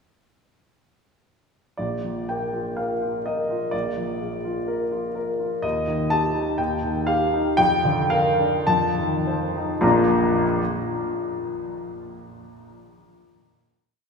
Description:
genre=classical, romantic character piece for solo piano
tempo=50-64 BPM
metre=2/4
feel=rubato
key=Bb major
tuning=A4 = 439 Hz
part: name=warm grand piano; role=solo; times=1.8-10.6 s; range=Bb1 to Bb5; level=-21 LUFS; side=left 1 dB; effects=none
room=wet cathedral reverb, RT60 5.0 s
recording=recorded in a church or concert hall, studio reverb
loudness=-21 LUFS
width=side -5 dB against mid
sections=1.8-9.8 A section; 9.8-12.0 final chord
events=slowing down 4.7-9.8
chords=1.8 Bb5; 3.7 Bb7; 5.6 Eb; 7.6 Bb/F; 8.7 F7; 9.8 Bb

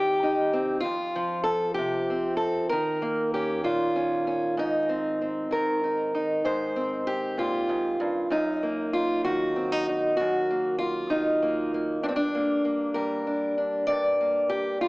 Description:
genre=folk, solo fingerstyle acoustic guitar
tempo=64 BPM (dotted quarters)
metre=6/8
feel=straight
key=unclear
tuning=A4 = 439 Hz
part: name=fingerpicked acoustic archtop guitar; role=solo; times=0.0-14.9 s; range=F2 to D5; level=-24 LUFS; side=equal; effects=none
room=moderate recital hall reverb, RT60 1.6 s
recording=AM radio sound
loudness=-24 LUFS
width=side -24 dB against mid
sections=0.0-4.6 A section; 4.6-14.9 B section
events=none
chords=0.0 Cm; 0.8 F5; 2.7 Eb5; 4.6 Abadd9; 8.3 Ebm/Gb; 12.0 Gm

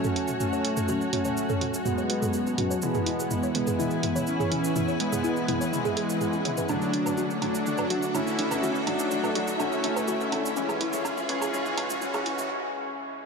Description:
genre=melodic techno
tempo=124 BPM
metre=4/4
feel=straight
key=F# minor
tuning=A4 = 440 Hz
part: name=soft supersaw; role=melody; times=0.0-12.5 s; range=E3 to E4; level=-29 LUFS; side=right 1 dB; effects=ping-pong delay
part: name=evolving wavetable pad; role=sustained chords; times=0.0-12.5 s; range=G#4 to D6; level=-38 LUFS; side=left 1 dB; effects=phaser, built-in reverb
part: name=woody wave-folded pluck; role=arpeggios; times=0.0-12.3 s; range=C#4 to C#5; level=-34 LUFS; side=equal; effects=chorus, vintage 12-bit sampler grit, tape echo
part: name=analog synth brass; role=stabs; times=0.0-13.3 s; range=C#3 to F#4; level=-32 LUFS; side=left 3 dB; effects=chorus, tape echo
part: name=punchy analog drum machine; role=drums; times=0.0-12.5 s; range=hi-hat, toms, woodblock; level=-33 LUFS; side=right 1 dB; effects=none
part: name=cabasa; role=percussion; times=0.0-12.5 s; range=none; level=-38 LUFS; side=right 3 dB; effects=none
part: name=riser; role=sound effects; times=4.6-12.5 s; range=none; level=-37 LUFS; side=right 2 dB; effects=none
part: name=rich studio string section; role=texture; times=0.0-12.5 s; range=C#4 to G#5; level=-35 LUFS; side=left 1 dB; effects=none
part: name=tight sequencer bass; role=bass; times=0.2-12.5 s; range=none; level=barely audible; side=none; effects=none
room=moderate huge ambient reverb, RT60 4.8 s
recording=dark, warm production, high-pass filter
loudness=-24 LUFS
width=side -4 dB against mid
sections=0.0-13.3 A section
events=build-up 0.0-13.3; drum fill 0.0-12.5; filter sweep on synth pluck 0.0-13.3; filter sweep on analog polysynth 0.0-13.3; riser 4.6-12.5; break 12.5-13.3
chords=0.0 F#madd9; 2.8 E/F#; 6.7 D/F#; 10.6 C#m/F#

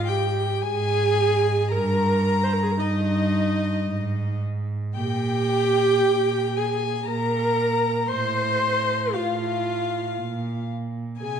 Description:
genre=classical, slow romantic movement for string quartet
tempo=57 BPM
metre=3/4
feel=uneven beats, rubato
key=unclear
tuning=A4 = 440 Hz
part: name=rich violin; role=melody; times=0.0-11.4 s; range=Eb5 to C6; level=-30 LUFS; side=left 12 dB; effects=none
part: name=rich violin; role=second line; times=0.0-11.4 s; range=Eb5 to C6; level=-30 LUFS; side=left 4 dB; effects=none
part: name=dark viola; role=accompaniment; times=0.0-11.4 s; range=Eb4 to C5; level=-24 LUFS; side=right 2 dB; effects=none
part: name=warm cello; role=bass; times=0.0-11.4 s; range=G2 to C3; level=-26 LUFS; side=right 2 dB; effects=none
room=moderate recital hall reverb, RT60 1.5 s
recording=dark, warm production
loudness=-21 LUFS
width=side -8 dB against mid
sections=0.0-11.4 A section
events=none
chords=0.0 Fmadd9/Ab (rootless); 1.7 Eb/G; 3.9 Ab5; 4.9 Gm/Bb; 8.1 F/A; 10.2 Bb5

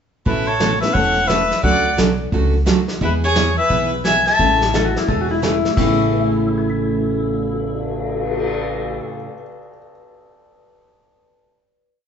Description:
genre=country, western swing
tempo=174 BPM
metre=4/4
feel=swing 63% on 8ths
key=A major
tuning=A4 = 440 Hz
part: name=warm oboe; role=melody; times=0.3-4.7 s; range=B4 to A5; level=-18 LUFS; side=left 3 dB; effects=none
part: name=clear fiddle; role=second line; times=0.3-4.7 s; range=E4 to E5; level=-23 LUFS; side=right 2 dB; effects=none
part: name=picked steel-string acoustic guitar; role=accompaniment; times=0.3-9.3 s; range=A2 to A4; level=-22 LUFS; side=right 3 dB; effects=none
part: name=upright bass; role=bass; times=0.3-9.0 s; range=E1 to E2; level=-23 LUFS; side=equal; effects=none
part: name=vintage brush drum kit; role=drums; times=0.3-8.5 s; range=brushed snare drum, crash cymbal, cymbal swell, hi-hat, kick drum, snare drum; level=-24 LUFS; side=left 1 dB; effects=none
part: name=honky-tonk upright piano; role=accompaniment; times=0.8-9.9 s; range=A2 to B6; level=-29 LUFS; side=equal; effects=none
part: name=clean lap steel guitar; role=second line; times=4.8-9.0 s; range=E4 to A4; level=-22 LUFS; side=left 6 dB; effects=none
room=moderate large studio reverb, RT60 1.2 s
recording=band playing live in one room, nothing above 7.9 kHz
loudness=-15 LUFS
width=side -7 dB against mid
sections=0.3-5.8 A section; 5.8-8.5 final chord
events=none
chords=0.3 Aadd9; 1.6 Dmaj7; 3.0 E; 4.4 Amaj7

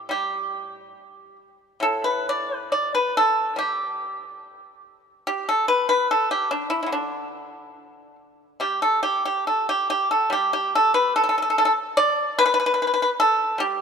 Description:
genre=chinese traditional, Chinese solo plucked strings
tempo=68-76 BPM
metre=2/4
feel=rubato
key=unclear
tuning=A4 = 440 Hz
part: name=pipa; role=solo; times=0.0-13.8 s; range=A2 to D5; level=-20 LUFS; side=equal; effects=none
room=moderate lush hall reverb, RT60 2.7 s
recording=rough home demo mix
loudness=-20 LUFS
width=side -6 dB against mid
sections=0.0-8.6 A section; 8.6-13.8 B section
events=none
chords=none

